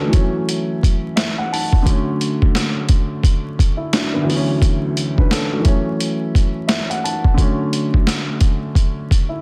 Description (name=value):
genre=hip hop, boom-bap hip-hop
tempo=87 BPM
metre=4/4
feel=swing 63% on 16ths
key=unclear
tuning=A4 = 439 Hz
part: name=dark upright piano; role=accompaniment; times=0.0-9.4 s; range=D2 to A5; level=-23 LUFS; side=equal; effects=cassette tape, high-pass filter, low-pass filter
part: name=boom bap sampler-style drum kit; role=drums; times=0.1-9.3 s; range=hi-hat, kick drum, snare drum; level=-18 LUFS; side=equal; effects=none
room=light reverb, digital ambience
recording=dense, heavily limited modern master, vinyl crackle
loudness=-18 LUFS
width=mono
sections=0.0-9.4 A section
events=none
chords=0.1 F#m7; 1.9 Dmaj9; 5.7 F#m7; 7.4 Dmaj7